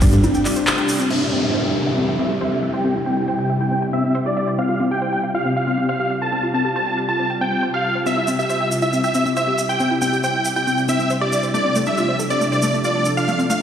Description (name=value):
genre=uplifting trance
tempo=138 BPM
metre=4/4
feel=straight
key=C major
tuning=A4 = 440 Hz
part: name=wide unison pluck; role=arpeggios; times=0.0-13.5 s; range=A3 to G5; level=-24 LUFS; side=left 2 dB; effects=sidechain pumping, dub echo
part: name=big-room dance drum kit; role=drums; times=0.0-1.2 s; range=congas, crash cymbal, handclaps, hi-hat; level=-24 LUFS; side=equal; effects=none
part: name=tube shaker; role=percussion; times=0.0-1.1, 8.1-13.6 s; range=none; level=-31 LUFS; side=right 2 dB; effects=none
part: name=dense compressed supersaw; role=melody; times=1.1-13.6 s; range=D5 to A5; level=-21 LUFS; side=right 1 dB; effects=sidechain pumping, low-pass filter, dub echo
part: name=downlifter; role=sound effects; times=1.1-4.6 s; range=none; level=-26 LUFS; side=equal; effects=none
room=moderate huge ambient reverb, RT60 6.1 s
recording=played on a big sound system in a bare room, large studio reverb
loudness=-17 LUFS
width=side -9 dB against mid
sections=0.0-1.1 A section; 1.1-13.6 B section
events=band accent 0.7; filter sweep on supersaw synth 1.1-13.6; filter sweep on synth pluck 1.1-13.6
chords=0.0 Gsus4; 1.1 C; 4.6 Fsus2; 8.1 C; 11.5 Dm7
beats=0.24 0.67 | 1.11 1.54 1.98 2.41 | 2.85 3.28 3.71 4.15 | 4.58 5.02 5.45 5.89 | 6.32 6.76 7.19 7.63 | 8.06 8.50 8.93 9.37 | 9.80 10.24 10.67 11.11 | 11.54 11.98 12.41 12.85 | 13.28